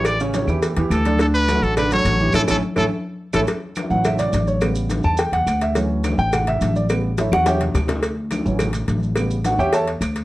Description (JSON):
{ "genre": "latin, salsa", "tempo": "211 BPM", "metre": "4/4", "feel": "straight", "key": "D major", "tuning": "A4 = 440 Hz", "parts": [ { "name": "bright trumpet", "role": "melody", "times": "0.0-3.4 s", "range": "A4 to D5", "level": "-21 LUFS", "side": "equal", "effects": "none" }, { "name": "warm grand piano", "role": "accompaniment", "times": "0.0-9.9 s", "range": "C#3 to A5", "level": "-21 LUFS", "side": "right 2 dB", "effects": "none" }, { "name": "upright bass", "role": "bass", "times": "0.0-10.2 s", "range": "A1 to E2", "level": "-22 LUFS", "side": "equal", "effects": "none" }, { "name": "cowbell and bongos", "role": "percussion", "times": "0.0-10.2 s", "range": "none", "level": "-26 LUFS", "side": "left 1 dB", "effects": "none" }, { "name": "claves", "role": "percussion", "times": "0.1-10.2 s", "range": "none", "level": "-35 LUFS", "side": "right 5 dB", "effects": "none" }, { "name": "congas", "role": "percussion", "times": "0.1-10.2 s", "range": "none", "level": "-28 LUFS", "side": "left 2 dB", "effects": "none" }, { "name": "maracas", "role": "percussion", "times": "0.1-10.2 s", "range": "none", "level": "-37 LUFS", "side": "right 3 dB", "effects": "none" } ], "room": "moderate studio reverb, RT60 0.8 s", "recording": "worn, warbling old tape, cassette tape, warbly pitch drift", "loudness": "-17 LUFS", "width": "side -17 dB against mid", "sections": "0.0-3.5 A section; 3.5-10.2 B section", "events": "band accent 2.3-3.5; drum fill 2.8-3.5, 7.2-8.0; grand piano solo 3.5-10.2", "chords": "0.1 A7; 1.2 Dmaj7; 2.3 A; 3.5 Dmaj7; 4.6 A7; 5.8 Dmaj7; 6.9 A7; 8.0 Dmaj7; 9.2 A7", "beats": "| 0.06 0.34 0.63 0.91 | 1.20 1.48 1.77 2.05 | 2.34 2.62 2.91 3.19 | 3.48 3.76 4.05 4.33 | 4.62 4.90 5.19 5.47 | 5.76 6.04 6.33 6.61 | 6.89 7.18 7.46 7.75 | 8.03 8.32 8.60 8.88 | 9.17 9.45 9.74 10.02" }